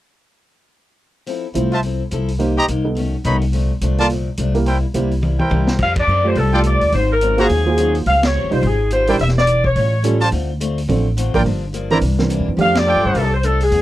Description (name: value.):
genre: jazz, big band swing.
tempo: 212 BPM.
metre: 4/4.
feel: swing 60% on 8ths.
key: F major.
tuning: A4 = 440 Hz.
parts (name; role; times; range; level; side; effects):
picked steel-string acoustic guitar; accompaniment; 1.3-13.8 s; G2 to A4; -26 LUFS; left 5 dB; none.
vintage drum kit; drums; 1.3-13.8 s; crash cymbal, hi-hat, kick drum, ride cymbal, snare drum, toms; -26 LUFS; equal; none.
dark baby grand piano; accompaniment; 1.5-13.0 s; E3 to D5; -20 LUFS; right 4 dB; none.
upright bass; bass; 1.6-13.8 s; E1 to G2; -18 LUFS; equal; none.
clear trumpet section; stabs; 1.7-13.3 s; D#4 to B5; -18 LUFS; equal; none.
dark saxophone section; melody; 5.8-10.2, 12.6-13.8 s; Ab4 to F5; -17 LUFS; left 1 dB; none.
room: little or no reverb.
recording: dry, close 1970s-style studio recording.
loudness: -15 LUFS.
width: side -15 dB against mid.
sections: 1.3-5.8 A section; 5.8-13.8 B section.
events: drum fill 5.2-5.8; band accent 5.9, 8.2, 12.7.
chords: 1.3 Fmaj7; 2.4 Cm7; 3.0 B9; 3.5 Bbmaj7; 4.7 C7; 5.8 F69; 6.9 Ab13; 8.1 Dbmaj9#11; 9.2 Em7b5; 9.8 A7b13; 10.3 Dm7; 11.5 Gm7; 12.0 C9; 12.6 F69.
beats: | 1.27 1.55 1.83 2.12 | 2.40 2.68 2.97 3.25 | 3.53 3.81 4.10 4.38 | 4.66 4.95 5.23 5.51 | 5.79 6.08 6.36 6.64 | 6.93 7.21 7.49 7.78 | 8.06 8.34 8.62 8.91 | 9.19 9.47 9.76 10.04 | 10.32 10.61 10.89 11.17 | 11.45 11.74 12.02 12.30 | 12.59 12.87 13.15 13.43 | 13.72.